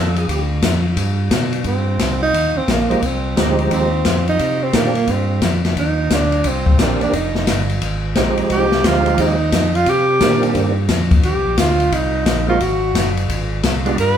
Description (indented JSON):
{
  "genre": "soul jazz organ trio",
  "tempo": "175 BPM",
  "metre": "4/4",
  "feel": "swing 65% on 8ths",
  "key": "C minor",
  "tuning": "A4 = 440 Hz",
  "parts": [
    { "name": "percussive tonewheel organ", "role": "melody", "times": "0.0-0.4, 2.9-14.0 s", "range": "Eb3 to A4", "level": "-20 LUFS", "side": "right 3 dB", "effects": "slow rotary speaker, overdrive, chorus vibrato" },
    { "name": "tonewheel organ", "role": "bass", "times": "0.0-14.2 s", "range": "F1 to C3", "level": "-20 LUFS", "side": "equal", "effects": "chorus vibrato, stopped rotary speaker" },
    { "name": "open jazz drum kit", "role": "drums", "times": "0.2-14.1 s", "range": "hi-hat, kick drum, ride cymbal, snare drum", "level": "-19 LUFS", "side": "left 2 dB", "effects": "none" },
    { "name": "breathy tenor saxophone", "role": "melody", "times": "1.7-14.2 s", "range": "Bb3 to B4", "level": "-18 LUFS", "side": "right 2 dB", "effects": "none" }
  ],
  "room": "moderate large studio reverb, RT60 1.1 s",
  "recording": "band playing live in one room",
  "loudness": "-14 LUFS",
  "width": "side -9 dB against mid",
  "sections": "0.0-1.7 A section; 1.7-14.2 A section",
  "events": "tenor saxophone solo 1.7-14.2",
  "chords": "0.3 Dmadd11; 1.0 G; 1.7 Cm7; 3.0 Fm7; 4.4 Cm7; 7.1 Fm7; 9.9 Cm7; 12.6 Ab7"
}